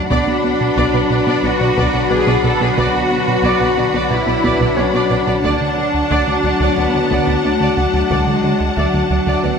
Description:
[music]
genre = cinematic, hybrid orchestral and electronic film score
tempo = 90 BPM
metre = 4/4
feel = straight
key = B minor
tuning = A4 = 440 Hz
[part]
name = warm symphonic violin section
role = second line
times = 0.0-9.6 s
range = F#5 to B5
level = -23 LUFS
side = left 5 dB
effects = none
[part]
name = glassy FM pad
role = sustained chords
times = 0.0-9.6 s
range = D3 to F#5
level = -23 LUFS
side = left 2 dB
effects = ensemble chorus, built-in reverb
[part]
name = mallet-like synth pluck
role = arpeggios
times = 0.0-9.5 s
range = D3 to B4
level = -27 LUFS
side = equal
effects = none
[part]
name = plucky analog bass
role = riff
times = 0.0-9.5 s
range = D2 to B3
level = -21 LUFS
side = right 2 dB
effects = none
[part]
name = rich symphonic cello section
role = bass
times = 0.0-9.6 s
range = F#3 to A4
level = -21 LUFS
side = right 3 dB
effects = none
[part]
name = clear concert grand piano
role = texture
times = 0.0-9.6 s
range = B3 to F#5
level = -30 LUFS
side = equal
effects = none
[part]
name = clear symphonic viola section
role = accompaniment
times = 0.1-9.6 s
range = D4 to D5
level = -21 LUFS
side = right 1 dB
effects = none
[part]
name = warm French horn section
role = sustained chords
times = 0.1-9.6 s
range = F#3 to F#4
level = -22 LUFS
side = left 8 dB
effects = none
[part]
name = rich studio double bass section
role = bass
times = 0.1-9.5 s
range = B1 to D2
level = -25 LUFS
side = right 4 dB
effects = none
[part]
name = taiko ensemble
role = drums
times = 0.1-9.4 s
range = none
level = -28 LUFS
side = equal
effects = none
[sound]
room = wet concert hall reverb, RT60 2.0 s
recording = none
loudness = -13 LUFS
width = side -6 dB against mid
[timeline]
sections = 0.0-9.6 A section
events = none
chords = 0.1 Bm; 5.4 D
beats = | 0.11 0.77 1.44 2.11 | 2.77 3.44 4.11 4.77 | 5.44 6.11 6.77 7.44 | 8.11 8.77 9.44

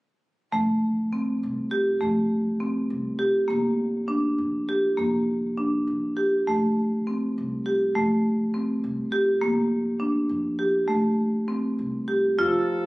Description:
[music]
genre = contemporary instrumental, chamber music in an uneven meter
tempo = 202 BPM (eighths)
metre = 5/8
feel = straight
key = F mixolydian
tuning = A4 = 440 Hz
[part]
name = marimba with medium hard mallets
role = arpeggios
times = 0.5-12.7 s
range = A3 to G4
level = -22 LUFS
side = equal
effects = none
[part]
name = upright bass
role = bass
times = 0.5-12.9 s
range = F1 to F2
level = -39 LUFS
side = equal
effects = none
[part]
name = warm woodwind section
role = sustained chords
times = 12.4-12.9 s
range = F3 to A4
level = -30 LUFS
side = left 1 dB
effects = none
[sound]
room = light reverb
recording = recorded on a phone in the room, club reverb, compression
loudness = -22 LUFS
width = side -20 dB against mid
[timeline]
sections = 0.5-12.4 A section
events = none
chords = 0.5 F; 3.5 Bb/F; 6.5 F; 9.4 Bb/F; 10.9 F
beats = | 0.53 0.83 1.13 1.43 1.72 | 2.02 2.31 2.61 2.90 3.20 | 3.49 3.79 4.08 4.38 4.67 | 4.97 5.27 5.57 5.87 6.17 | 6.47 6.76 7.06 7.36 7.65 | 7.95 8.24 8.53 8.82 9.12 | 9.41 9.70 10.00 10.29 10.59 | 10.89 11.19 11.48 11.78 12.08 | 12.39 12.69

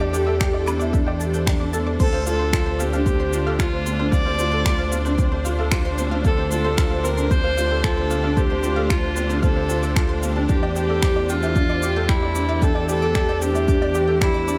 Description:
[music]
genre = piano and strings electronica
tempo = 113 BPM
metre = 4/4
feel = straight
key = unclear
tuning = A4 = 438 Hz
[part]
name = warm viola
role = melody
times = 0.0-14.6 s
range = E4 to D5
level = -27 LUFS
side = equal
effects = none
[part]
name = clear studio string section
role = sustained chords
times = 0.0-14.6 s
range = A3 to C5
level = -32 LUFS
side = equal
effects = sidechain pumping
[part]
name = analog pluck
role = arpeggios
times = 0.0-14.5 s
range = C5 to G6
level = -37 LUFS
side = equal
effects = chorus, sidechain pumping, digital delay
[part]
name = felt-muted upright piano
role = riff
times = 0.0-14.6 s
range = C4 to D5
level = -28 LUFS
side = equal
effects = digital delay
[part]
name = dark detuned saw bass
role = bass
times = 0.0-14.6 s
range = D2 to E2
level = -27 LUFS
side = equal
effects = sidechain pumping
[part]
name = deep house drum kit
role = drums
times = 0.1-14.6 s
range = crash cymbal, finger snaps, shaker, woodblock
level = -32 LUFS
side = equal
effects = small room reverb
[part]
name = electronic kick drum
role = drums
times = 0.4-14.3 s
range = none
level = -24 LUFS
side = equal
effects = small room reverb
[sound]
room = light reverb, small room ambience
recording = none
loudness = -21 LUFS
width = mono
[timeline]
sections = 0.0-14.6 A section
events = none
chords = 0.0 A7sus4/E; 2.0 Dm7; 10.5 A7sus4/E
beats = 0.41 0.94 1.47 | 2.00 2.53 3.06 3.59 | 4.12 4.65 5.18 5.72 | 6.25 6.78 7.31 7.84 | 8.37 8.90 9.43 9.96 | 10.49 11.03 11.56 12.09 | 12.62 13.15 13.68 14.21

